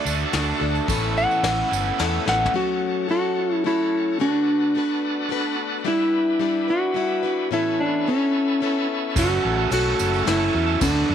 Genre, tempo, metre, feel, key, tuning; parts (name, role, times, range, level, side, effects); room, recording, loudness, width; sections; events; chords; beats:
folk rock and heartland rock; 109 BPM; 3/4; straight; A4 = 440 Hz
clean lap steel guitar; melody; 0.0-11.1 s; C#4 to F#5; -22 LUFS; right 1 dB; tape echo
picked plugged-in steel-string acoustic guitar; accompaniment; 0.0-11.1 s; A2 to B4; -27 LUFS; left 12 dB
bright tonewheel organ; sustained chords; 0.0-11.1 s; G3 to A4; -31 LUFS; right 1 dB; slow rotary speaker, overdrive
crunchy overdriven guitar; riff; 0.0-2.5, 9.2-11.1 s; F#2 to A4; -26 LUFS; right 12 dB
fingered electric bass; bass; 0.1-2.5, 9.2-11.1 s; F#1 to F#2; -26 LUFS; right 1 dB
tambourine; percussion; 0.1-2.1, 9.2-10.9 s; -35 LUFS; right 16 dB
soft brush drum kit; drums; 0.3-2.6, 9.2-10.9 s; crash cymbal, kick drum, ride cymbal, snare drum, toms; -29 LUFS; left 3 dB
light reverb, small room ambience; 1960s-style stereo with parts hard left and right; -19 LUFS; side -9 dB against mid
0.0-2.5 A section; 2.5-11.1 B section
electric slide guitar solo 0.0-2.5; drum fill 2.3
0.0 D; 0.9 Aadd9; 2.5 F#m; 4.2 D6; 5.9 G6; 7.5 Aadd9; 9.2 F#m
0.34 | 0.89 1.44 2.00 | 2.55 3.10 3.65 | 4.21 4.76 5.31 | 5.86 6.41 6.96 | 7.51 8.06 8.62 | 9.17 9.72 10.27 | 10.82